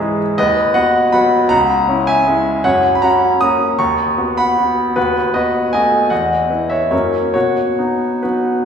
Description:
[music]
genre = classical, piano waltz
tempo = 134-168 BPM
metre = 3/4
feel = rubato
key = B major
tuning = A4 = 437 Hz
[part]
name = bright grand piano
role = solo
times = 0.0-8.7 s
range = C#2 to D#6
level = -13 LUFS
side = equal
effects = none
[sound]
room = wet recital hall reverb, RT60 1.8 s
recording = recorded in a church or concert hall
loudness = -13 LUFS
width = side -7 dB against mid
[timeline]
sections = 0.0-8.7 A section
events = none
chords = 0.4 B/D#; 1.5 C#m; 2.6 F#; 3.8 B/D#; 5.0 B7/D#; 6.1 E5; 6.9 F#; 7.3 B

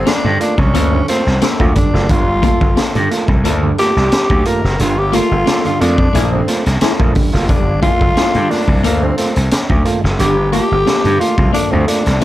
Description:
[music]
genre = funk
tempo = 89 BPM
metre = 4/4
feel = straight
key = G minor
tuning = A4 = 440 Hz
[part]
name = growling tenor saxophone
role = melody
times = 0.0-12.2 s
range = Bb3 to Bb4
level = -18 LUFS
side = left 1 dB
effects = tape echo
[part]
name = gritty slap bass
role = bass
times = 0.0-12.2 s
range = F#1 to G2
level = -16 LUFS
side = equal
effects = overdrive
[part]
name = clean electric guitar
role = accompaniment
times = 0.1-12.2 s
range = Bb3 to A4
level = -22 LUFS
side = left 6 dB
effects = spring reverb
[part]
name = auto-wah clav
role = stabs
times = 0.1-12.0 s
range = G2 to F4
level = -20 LUFS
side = right 3 dB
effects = overdrive
[part]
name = raw garage drum kit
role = drums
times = 0.1-12.2 s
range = hi-hat, kick drum, snare drum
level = -16 LUFS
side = equal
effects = none
[sound]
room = light reverb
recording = dark, warm production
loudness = -11 LUFS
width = side -15 dB against mid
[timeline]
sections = 0.0-12.2 A section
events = tenor saxophone solo 0.0-12.2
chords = 0.0 Gm9

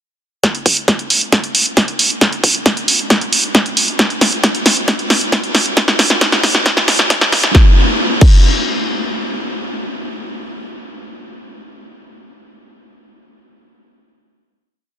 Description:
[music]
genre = trance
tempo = 135 BPM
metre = 4/4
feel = straight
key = none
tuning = none
[part]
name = electronic kick drum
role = drums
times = 0.4-8.3 s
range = none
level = -11 LUFS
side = equal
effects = high-pass filter on kick
[part]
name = punchy analog drum machine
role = drums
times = 0.4-8.3 s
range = crash cymbal, hi-hat, snare drum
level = -13 LUFS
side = equal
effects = none
[sound]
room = moderate huge ambient reverb, RT60 8.0 s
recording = dense, heavily limited modern master, high-pass filter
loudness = -11 LUFS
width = side -10 dB against mid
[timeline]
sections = 0.4-7.5 build; 7.5-11.1 final hit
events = build-up 0.4-7.5; drum fill 0.4-7.5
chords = none

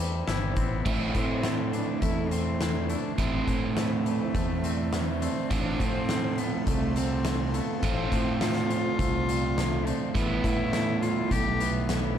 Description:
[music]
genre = post-rock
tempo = 103 BPM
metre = 4/4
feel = straight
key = A minor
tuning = A4 = 440 Hz
[part]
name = rich cello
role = melody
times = 0.0-11.6 s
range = A3 to G4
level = -33 LUFS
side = left 4 dB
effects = digital delay
[part]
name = evolving wavetable pad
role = sustained chords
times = 0.0-12.2 s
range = C4 to C6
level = -42 LUFS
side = left 9 dB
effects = none
[part]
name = twangy electric guitar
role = arpeggios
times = 0.0-12.2 s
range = A2 to E4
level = -39 LUFS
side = left 6 dB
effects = digital delay
[part]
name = vibraphone with medium mallets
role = arpeggios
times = 0.0-12.2 s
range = A4 to E5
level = -41 LUFS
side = equal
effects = digital delay
[part]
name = fuzz fingered electric bass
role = bass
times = 0.0-12.2 s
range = G1 to A2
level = -31 LUFS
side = equal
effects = overdrive
[part]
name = oversized low-tuned drum kit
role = drums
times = 0.3-12.0 s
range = crash cymbal, hi-hat, kick drum, snare drum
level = -30 LUFS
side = left 1 dB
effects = none
[part]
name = crunchy overdriven guitar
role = riff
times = 0.9-12.2 s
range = A3 to A4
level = -30 LUFS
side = right 8 dB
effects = none
[sound]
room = little or no reverb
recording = dark, warm production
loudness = -25 LUFS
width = side -9 dB against mid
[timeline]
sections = 0.9-12.2 A section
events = none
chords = 0.0 Am7; 0.9 Am; 5.5 F/A; 10.2 Esus4/A

